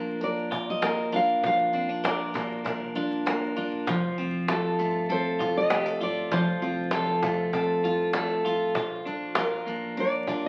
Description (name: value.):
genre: acoustic pop.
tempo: 98 BPM.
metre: 4/4.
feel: straight.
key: Bb major.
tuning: A4 = 440 Hz.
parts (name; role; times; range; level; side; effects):
nylon-string guitar; melody; 0.0-10.5 s; A4 to F5; -31 LUFS; equal; none.
picked steel-string acoustic guitar; accompaniment; 0.0-10.5 s; F3 to Bb4; -31 LUFS; equal; none.
clean electric guitar; arpeggios; 0.0-10.5 s; F3 to F4; -34 LUFS; equal; none.
upright bass; bass; 0.0-10.5 s; F1 to C2; -50 LUFS; equal; none.
cajon; drums; 0.1-10.5 s; none; -33 LUFS; equal; none.
room: moderate studio reverb, RT60 0.5 s.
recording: very old 78 rpm record, vinyl crackle, nothing above 10.7 kHz.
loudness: -27 LUFS.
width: mono.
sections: 0.0-10.5 A section.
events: none.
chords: 0.0 Bb; 3.9 F; 8.8 Bb.